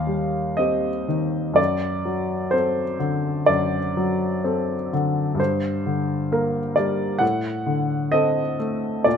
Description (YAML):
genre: classical, romantic nocturne for solo piano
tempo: 59-67 BPM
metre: 4/4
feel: rubato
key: unclear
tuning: A4 = 440 Hz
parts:
  - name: clear grand piano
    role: solo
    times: 0.0-9.2 s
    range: Eb2 to F#5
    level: -20 LUFS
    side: left 1 dB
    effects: none
room: light reverb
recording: none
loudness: -20 LUFS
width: side -7 dB against mid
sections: 0.0-9.2 A section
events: none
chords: 0.0 Cm/Eb; 1.6 D7/F#; 5.4 Gm; 7.2 D7/A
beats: 0.60 | 1.58 2.53 3.49 4.44 | 5.39 6.31 7.22 8.13 | 9.06